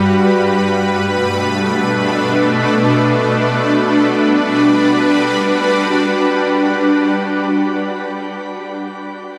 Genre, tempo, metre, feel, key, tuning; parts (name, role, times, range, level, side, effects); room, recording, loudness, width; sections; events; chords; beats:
hip hop; free time; G major; A4 = 440 Hz
shimmering ambient pad; solo; 0.0-7.2 s; G2 to B4; -15 LUFS; equal; chorus, built-in reverb
wet shimmer reverb, RT60 7.5 s; -15 LUFS; mono
0.0-3.7 A section; 3.7-7.1 B section
0.3 Bm7; 3.7 Gmaj7
free time